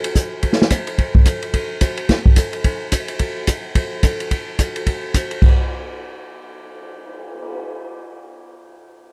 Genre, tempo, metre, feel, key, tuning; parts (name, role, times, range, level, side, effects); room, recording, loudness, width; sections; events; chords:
jazz; 217 BPM; 4/4; swing 60% on 8ths
open jazz drum kit; drums; 0.0-7.6 s; crash cymbal, cymbal swell, hi-hat, kick drum, ride cymbal, snare drum; -19 LUFS; equal
little or no reverb; dry, close 1970s-style studio recording; -18 LUFS; mono
1.0-5.4 A section; 5.4-7.6 B section